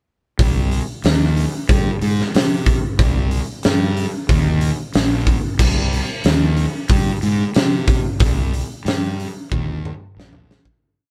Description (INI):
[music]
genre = stoner and doom metal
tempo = 92 BPM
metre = 4/4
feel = straight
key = C minor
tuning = A4 = 436 Hz
[part]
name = fuzz fingered electric bass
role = bass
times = 0.4-10.6 s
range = Bb1 to C3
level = -22 LUFS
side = equal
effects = overdrive
[part]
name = big rock drum kit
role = drums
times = 0.4-10.8 s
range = crash cymbal, hi-hat, kick drum, snare drum, toms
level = -20 LUFS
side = equal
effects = none
[sound]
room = little or no reverb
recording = band playing live in one room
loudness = -18 LUFS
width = mono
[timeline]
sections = 0.4-10.8 riff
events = fade-out 8.2-10.8; drum fill 9.5-10.8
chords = none